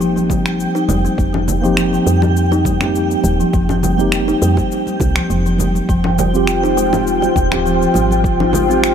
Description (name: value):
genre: organic downtempo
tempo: 102 BPM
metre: 4/4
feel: swing 54% on 16ths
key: unclear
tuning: A4 = 440 Hz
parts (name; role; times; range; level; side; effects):
- mellow tine electric piano; accompaniment; 0.0-8.9 s; Bb3 to G4; -20 LUFS; right 1 dB; medium stereo tremolo, sidechain pumping, digital delay
- kalimba; arpeggios; 0.0-8.9 s; F3 to Eb4; -19 LUFS; left 2 dB; digital delay
- woody FM bass; bass; 0.0-8.9 s; Eb1 to F2; -19 LUFS; equal; tube saturation, sidechain pumping
- electronic cabasa, finger snaps and congas; drums; 0.0-8.9 s; none; -23 LUFS; left 3 dB; none
- twinkling granular texture; texture; 0.0-8.9 s; G5; -24 LUFS; right 2 dB; built-in reverb
- congas and bongos; percussion; 0.2-8.8 s; none; -26 LUFS; right 5 dB; none
- electronic kick drum; drums; 0.3-8.4 s; none; -19 LUFS; equal; none
- airy breathy pad; sustained chords; 6.1-8.9 s; F4 to G5; -18 LUFS; equal; chorus, sidechain pumping
room: light reverb, digital ambience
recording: none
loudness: -13 LUFS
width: side -8 dB against mid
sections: 0.0-8.9 A section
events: none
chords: 0.0 Cm7; 5.9 Fmadd9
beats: 0.01 0.59 | 1.18 1.77 2.36 2.95 | 3.54 4.12 4.71 5.30 | 5.89 6.48 7.07 7.65 | 8.24 8.83